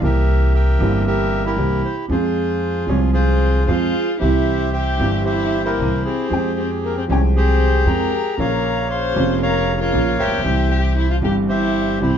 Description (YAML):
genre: tango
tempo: 116 BPM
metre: 4/4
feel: rubato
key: F harmonic minor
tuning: A4 = 440 Hz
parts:
  - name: bandoneon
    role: melody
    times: 0.0-12.2 s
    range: E4 to C6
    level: -22 LUFS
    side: equal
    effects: none
  - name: warm upright piano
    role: accompaniment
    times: 0.0-12.2 s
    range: F1 to G5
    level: -21 LUFS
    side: right 2 dB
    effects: none
  - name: upright bass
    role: bass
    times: 0.0-12.2 s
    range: F1 to F2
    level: -20 LUFS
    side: equal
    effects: none
  - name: dark violin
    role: second line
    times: 3.1-12.2 s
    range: Bb3 to C5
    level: -24 LUFS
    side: left 3 dB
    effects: none
room: moderate studio reverb, RT60 0.5 s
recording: heard from further back in the room, nothing above 7.5 kHz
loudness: -16 LUFS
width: side -8 dB against mid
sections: 0.0-12.2 A section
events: none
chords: 0.0 C7; 2.1 Fm; 4.2 C; 6.3 Fmadd9; 8.4 Bbm; 10.4 C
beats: | 0.02 0.54 1.06 1.57 | 2.09 2.62 3.14 3.67 | 4.20 4.73 5.26 5.78 | 6.31 6.83 7.35 7.86 | 8.38 8.90 9.42 9.93 | 10.45 10.97 11.49 12.02